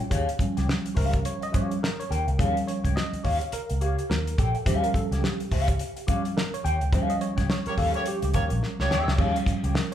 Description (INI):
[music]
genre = funk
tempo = 106 BPM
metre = 4/4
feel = swing 60% on 16ths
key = Eb mixolydian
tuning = A4 = 439 Hz
[part]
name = mellow electric guitar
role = accompaniment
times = 0.0-9.9 s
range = G4 to G5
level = -31 LUFS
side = left 2 dB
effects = wah
[part]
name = tine electric piano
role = stabs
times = 0.0-9.9 s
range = F3 to G5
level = -30 LUFS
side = right 2 dB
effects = overdrive, fast stereo tremolo
[part]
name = vintage muted fingered electric bass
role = bass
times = 0.1-9.7 s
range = Bb1 to Eb2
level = -28 LUFS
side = equal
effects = none
[part]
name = damped 70s drum kit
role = drums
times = 0.1-9.9 s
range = crash cymbal, hi-hat, kick drum, snare drum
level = -28 LUFS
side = equal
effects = none
[part]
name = mellow horn section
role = second line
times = 7.7-9.2 s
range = Bb3 to Db5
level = -31 LUFS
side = right 1 dB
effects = none
[sound]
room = moderate large studio reverb, RT60 1.2 s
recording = band playing live in one room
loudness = -23 LUFS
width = side -10 dB against mid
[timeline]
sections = 0.1-9.9 A section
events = tine electric piano solo 0.1-9.9; band accent 6.9-9.2; drum fill 8.6-9.2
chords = 0.1 Eb9